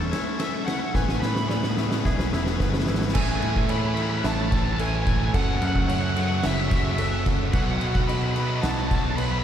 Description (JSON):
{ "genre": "post-rock", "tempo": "109 BPM", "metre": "4/4", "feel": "straight", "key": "A major", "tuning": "A4 = 440 Hz", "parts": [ { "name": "bright studio string section", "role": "sustained chords", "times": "0.0-9.4 s", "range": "F#3 to C#6", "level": "-38 LUFS", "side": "equal", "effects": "none" }, { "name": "felt-muted upright piano", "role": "arpeggios", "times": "0.0-9.4 s", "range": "A4 to F#5", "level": "-37 LUFS", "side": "right 5 dB", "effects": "analog delay" }, { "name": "twangy electric guitar", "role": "arpeggios", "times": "0.0-3.2 s", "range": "A3 to A4", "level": "-39 LUFS", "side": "left 3 dB", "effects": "none" }, { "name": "fuzz guitar", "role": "riff", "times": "0.0-9.4 s", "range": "F#2 to C#4", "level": "-31 LUFS", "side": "left 9 dB", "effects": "distortion" }, { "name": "growling picked electric bass", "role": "bass", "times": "0.0-9.4 s", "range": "E1 to B2", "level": "-27 LUFS", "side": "equal", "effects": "overdrive" }, { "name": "oversized low-tuned drum kit", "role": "drums", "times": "0.1-9.3 s", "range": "crash cymbal, kick drum, ride cymbal, snare drum", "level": "-26 LUFS", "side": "equal", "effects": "none" }, { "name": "crunchy overdriven guitar", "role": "melody", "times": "0.4-9.4 s", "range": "E5 to B5", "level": "-31 LUFS", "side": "equal", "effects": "lush chorus, analog delay" }, { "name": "fuzz guitar", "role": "riff", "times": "3.1-9.4 s", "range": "F#2 to B3", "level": "-31 LUFS", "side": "right 9 dB", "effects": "distortion" } ], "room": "moderate huge ambient reverb, RT60 8.1 s", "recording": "dreamy mix soaked in reverb", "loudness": "-21 LUFS", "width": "side -9 dB against mid", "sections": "0.0-3.2 A section; 3.2-9.4 B section", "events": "build-up 0.0-3.2; drum fill 0.0-3.2", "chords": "0.0 A; 1.0 E/A; 3.2 Amaj7; 5.3 F#m7; 7.5 B7", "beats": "0.41 | 0.96 1.50 2.06 2.60 | 3.15 3.70 4.25 4.80 | 5.35 5.89 6.44 6.99 | 7.54 8.09 8.63 9.18" }